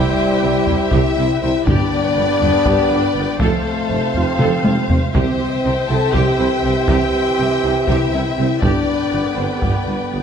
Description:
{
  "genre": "cinematic, epic orchestral film score",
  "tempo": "242 BPM (eighths)",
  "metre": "7/8",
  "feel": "straight",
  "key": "C major",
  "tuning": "A4 = 439 Hz",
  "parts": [
    { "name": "warm studio violin section", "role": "melody", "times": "0.0-10.2 s", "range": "G4 to A5", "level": "-27 LUFS", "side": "left 6 dB", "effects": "none" },
    { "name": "warm symphonic violin section", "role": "second line", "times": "0.0-10.2 s", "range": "D5 to G5", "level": "-25 LUFS", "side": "left 2 dB", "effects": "none" },
    { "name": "warm symphonic viola section", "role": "accompaniment", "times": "0.0-10.2 s", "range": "B3 to C5", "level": "-25 LUFS", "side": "right 2 dB", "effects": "none" },
    { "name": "bright trombone section", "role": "sustained chords", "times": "0.0-10.2 s", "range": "D3 to E4", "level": "-24 LUFS", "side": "right 4 dB", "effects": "none" },
    { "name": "mellow French horn section", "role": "sustained chords", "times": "0.0-10.2 s", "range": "G3 to A4", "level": "-20 LUFS", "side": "left 4 dB", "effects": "none" },
    { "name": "mellow tuba", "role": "bass", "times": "0.0-10.2 s", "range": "F1 to C2", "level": "-25 LUFS", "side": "right 3 dB", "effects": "none" },
    { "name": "warm symphonic double bass section", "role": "bass", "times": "0.0-10.2 s", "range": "F1 to C2", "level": "-25 LUFS", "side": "right 3 dB", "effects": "none" },
    { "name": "warm symphonic cello section", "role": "bass", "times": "0.4-10.2 s", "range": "F2 to C3", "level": "-26 LUFS", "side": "right 3 dB", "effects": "none" },
    { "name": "solo taiko drums", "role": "drums", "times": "0.7-10.1 s", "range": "none", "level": "-21 LUFS", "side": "left 1 dB", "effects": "none" },
    { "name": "timpani", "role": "percussion", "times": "1.7-2.4, 5.2-5.9 s", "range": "G2 to C3", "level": "-28 LUFS", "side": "left 1 dB", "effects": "none" }
  ],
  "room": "wet concert hall reverb, RT60 1.9 s",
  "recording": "none",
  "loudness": "-14 LUFS",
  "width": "side -7 dB against mid",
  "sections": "0.0-10.2 A section",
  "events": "drum fill 4.4-5.1",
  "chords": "0.0 C; 1.7 G; 3.4 F; 5.1 C; 8.6 G",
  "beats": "0.17 0.42 0.67 0.92 1.17 1.42 | 1.67 1.91 2.16 2.41 2.66 2.91 3.16 | 3.40 3.65 3.90 4.15 4.40 4.65 4.90 | 5.14 5.39 5.64 5.89 6.14 6.39 6.63 | 6.88 7.13 7.38 7.63 7.88 8.13 8.38 | 8.62 8.87 9.12 9.37 9.62 9.87 10.12"
}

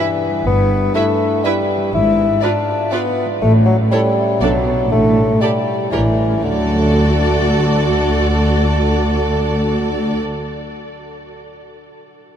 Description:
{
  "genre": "cinematic, playful, whimsical film cue",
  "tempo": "121 BPM",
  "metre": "3/4",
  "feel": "straight",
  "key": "D major",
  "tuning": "A4 = 441 Hz",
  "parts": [
    { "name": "rich studio violin section", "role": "melody", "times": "0.0-10.2 s", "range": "C#5 to E5", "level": "-27 LUFS", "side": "equal", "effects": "none" },
    { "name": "warm studio violin section", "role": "second line", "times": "0.0-10.2 s", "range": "A4 to B4", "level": "-26 LUFS", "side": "right 2 dB", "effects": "none" },
    { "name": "mellow bassoon", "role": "accompaniment", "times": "0.0-10.2 s", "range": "D3 to E4", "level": "-19 LUFS", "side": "left 2 dB", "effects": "none" },
    { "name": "rich studio viola section", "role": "accompaniment", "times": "0.0-10.2 s", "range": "D4 to G4", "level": "-26 LUFS", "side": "right 4 dB", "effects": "none" },
    { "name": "concert harp", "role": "arpeggios", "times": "0.0-11.0 s", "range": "G2 to E#5", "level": "-23 LUFS", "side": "right 1 dB", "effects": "none" },
    { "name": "dark studio cello section", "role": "bass", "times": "0.5-10.2 s", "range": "D2 to B2", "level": "-20 LUFS", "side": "equal", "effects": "none" },
    { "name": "rich studio double bass section", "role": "bass", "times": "0.5-10.2 s", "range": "G1 to D2", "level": "-19 LUFS", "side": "right 1 dB", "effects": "none" }
  ],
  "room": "wet huge ambient reverb, RT60 7.6 s",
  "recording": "in a vast, echoing space",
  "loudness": "-13 LUFS",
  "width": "side -9 dB against mid",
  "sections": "0.0-6.4 A section; 6.4-9.4 B section",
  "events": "none",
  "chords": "0.0 Em/G; 1.9 G#dim7; 3.4 A; 4.4 Bm7; 4.9 A7sus4; 5.9 A7b9; 6.4 D",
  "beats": "| 0.46 0.95 1.45 | 1.94 2.43 2.92 | 3.42 3.92 4.41 | 4.91 5.41 5.92 | 6.44 6.94 7.45 | 7.95 8.45 8.94"
}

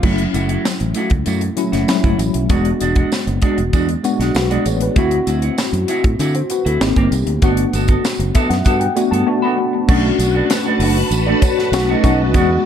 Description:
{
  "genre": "polished 1980s jazz-funk pop",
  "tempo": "98 BPM",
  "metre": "4/4",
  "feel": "straight",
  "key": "unclear",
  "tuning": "A4 = 442 Hz",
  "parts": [
    { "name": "tine electric piano", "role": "accompaniment", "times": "0.0-12.7 s", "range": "F#3 to B5", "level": "-18 LUFS", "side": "left 2 dB", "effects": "overdrive, fast stereo tremolo, analog chorus" },
    { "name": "semi-hollow electric guitar", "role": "riff", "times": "0.0-12.5 s", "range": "G#3 to A4", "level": "-22 LUFS", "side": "right 4 dB", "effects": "wide subtle chorus" },
    { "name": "fingered electric bass", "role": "bass", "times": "0.0-12.6 s", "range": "E1 to D3", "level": "-19 LUFS", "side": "equal", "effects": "none" },
    { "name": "crisp fusion drum kit", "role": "drums", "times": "0.0-12.5 s", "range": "crash cymbal, hi-hat, kick drum, snare drum", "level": "-19 LUFS", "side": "equal", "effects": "none" },
    { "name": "tambourine", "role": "percussion", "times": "0.3-12.5 s", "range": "none", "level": "-34 LUFS", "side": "right 12 dB", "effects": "none" },
    { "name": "phased string machine", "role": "sustained chords", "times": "9.9-12.7 s", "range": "F#4 to A5", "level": "-23 LUFS", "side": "left 1 dB", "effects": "ensemble chorus, phaser" }
  ],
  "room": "light reverb, small room ambience",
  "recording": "dark, warm production",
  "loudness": "-14 LUFS",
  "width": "side -9 dB against mid",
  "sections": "0.0-9.9 A section; 9.9-12.7 B section",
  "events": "tine electric piano fill 8.0-9.9",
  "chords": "0.0 F#m7; 2.5 E9; 5.0 D9; 6.8 G#maj9; 7.4 Gmaj9; 9.9 Bm7; 11.7 B7",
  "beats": "| 0.03 0.65 1.27 1.88 | 2.50 3.12 3.73 4.35 | 4.96 5.58 6.20 6.81 | 7.42 8.04 8.66 9.27 | 9.89 10.50 11.12 11.73 | 12.35"
}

